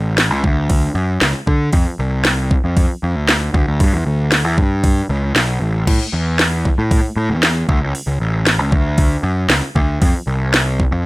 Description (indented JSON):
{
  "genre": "quiet-loud alternative rock",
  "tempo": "116 BPM",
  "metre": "4/4",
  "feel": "straight",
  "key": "unclear",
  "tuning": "A4 = 440 Hz",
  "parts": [
    { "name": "fuzz picked electric bass", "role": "bass", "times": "0.0-11.1 s", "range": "A1 to D3", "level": "-17 LUFS", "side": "equal", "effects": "overdrive" },
    { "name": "garage drum kit", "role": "drums", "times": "0.2-10.9 s", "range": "crash cymbal, hi-hat, kick drum, snare drum", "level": "-15 LUFS", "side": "equal", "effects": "none" }
  ],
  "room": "little or no reverb",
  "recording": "none",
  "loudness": "-14 LUFS",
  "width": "side -20 dB against mid",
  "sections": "0.0-11.1 A section",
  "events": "none",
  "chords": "none"
}